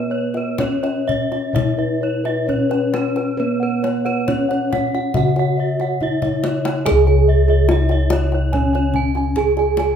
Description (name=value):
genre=Javanese gamelan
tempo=62-72 BPM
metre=4/4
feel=straight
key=C# slendro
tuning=A4 = 440 Hz
part: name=gamelan-type bronze metallophone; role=melody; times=0.0-10.0 s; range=B3-25c to G#4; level=-20 LUFS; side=right 1 dB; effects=none
part: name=gamelan-type bossed gongs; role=arpeggios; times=0.0-10.0 s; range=B4-25c to G#5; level=-26 LUFS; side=left 4 dB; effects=none
part: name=gamelan-type bronze metallophone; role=arpeggios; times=0.0-10.0 s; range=B4-25c to G#5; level=-25 LUFS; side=right 3 dB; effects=none
part: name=gamelan-type bossed gongs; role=bass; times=0.0-10.0 s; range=C#2 to B4-25c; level=-20 LUFS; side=left 1 dB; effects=none
part: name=kendang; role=percussion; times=0.3-10.0 s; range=none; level=-25 LUFS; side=left 2 dB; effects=none
room=moderate large studio reverb, RT60 0.9 s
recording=band playing live in one room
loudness=-16 LUFS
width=side -8 dB against mid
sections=0.0-6.9 A section; 6.9-10.0 B section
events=drum fill 6.0-6.9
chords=none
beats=0.59 1.54 2.48 | 3.39 4.28 5.16 6.01 | 6.86 7.69 8.52 9.36